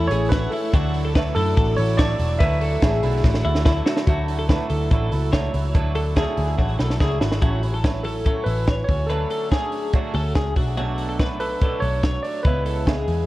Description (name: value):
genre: jangly indie pop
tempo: 143 BPM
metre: 4/4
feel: straight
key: unclear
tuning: A4 = 443 Hz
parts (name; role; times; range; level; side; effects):
- tine electric piano; melody; 0.0-3.6, 8.0-12.8 s; A4 to E5; -27 LUFS; equal; analog delay
- fingerpicked twelve-string acoustic guitar; accompaniment; 0.0-13.3 s; A2 to E4; -28 LUFS; right 4 dB; none
- string machine, violins; sustained chords; 0.0-4.0 s; A3 to E6; -36 LUFS; left 2 dB; ensemble chorus
- twelve-string electric guitar; arpeggios; 0.0-13.3 s; E4 to C#6; -28 LUFS; left 2 dB; tremolo, analog delay
- vintage muted picked electric bass; bass; 0.0-13.3 s; E1 to F#2; -23 LUFS; equal; none
- compact cocktail drum kit; drums; 0.1-13.2 s; hi-hat, kick drum, ride cymbal, snare drum; -21 LUFS; equal; none
room: light reverb, small room reverb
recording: echo-heavy mix, cassette tape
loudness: -19 LUFS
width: side -17 dB against mid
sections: 0.0-4.1 A section; 4.1-7.4 B section; 7.4-13.3 C section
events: drum fill 3.2-4.1, 6.6-7.4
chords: 0.0 A; 0.7 Dadd9; 7.4 A6; 8.9 Dmaj7; 10.6 Bm7; 12.4 C#m7